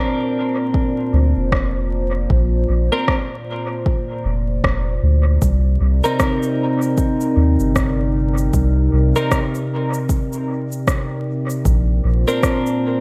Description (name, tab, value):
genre	ambient dub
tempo	77 BPM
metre	4/4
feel	swing 60% on 16ths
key	C minor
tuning	A4 = 439 Hz
part	warbly tape-like pad	sustained chords	0.1-13.0 s	Bb2 to D5	-25 LUFS	equal	chorus, built-in reverb
part	twelve-string electric guitar	stabs	0.0-13.0 s	C4 to Bb4	-24 LUFS	equal	spring reverb, dub echo
part	electronic kick drum	drums	0.7-12.6 s	none	-22 LUFS	equal	overdrive
part	soft dub sub bass	bass	1.1-12.2 s	F1 to Eb2	-19 LUFS	equal	none
part	electronic rim click and shaker	drums	1.5-12.8 s	none	-29 LUFS	equal	overdrive, dub echo
room	light reverb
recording	vinyl crackle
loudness	-18 LUFS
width	mono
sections	0.0-13.0 A section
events	none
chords	0.0 Bbadd9; 5.4 Cm7; 11.7 Bbadd9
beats	0.74 1.52 | 2.30 3.08 3.86 4.64 | 5.42 6.20 6.98 7.76 | 8.54 9.32 10.10 10.88 | 11.65 12.43